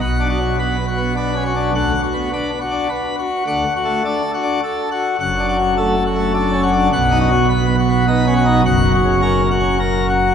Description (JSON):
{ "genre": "classical, organ toccata", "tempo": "104 BPM", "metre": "3/4", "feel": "straight", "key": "B minor, B major from 6.9 s", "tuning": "A4 = 440 Hz", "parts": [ { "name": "pipe organ, plenum", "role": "solo", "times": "0.0-10.3 s", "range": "F#1 to F#5", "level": "-15 LUFS", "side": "equal", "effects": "none" } ], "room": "wet church reverb, RT60 3.3 s", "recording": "none", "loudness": "-15 LUFS", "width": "side -7 dB against mid", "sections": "0.0-10.3 A section", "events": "none", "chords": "0.0 Bm; 1.8 Bm/D; 3.5 D; 5.2 D/F#; 6.9 B; 8.7 F#" }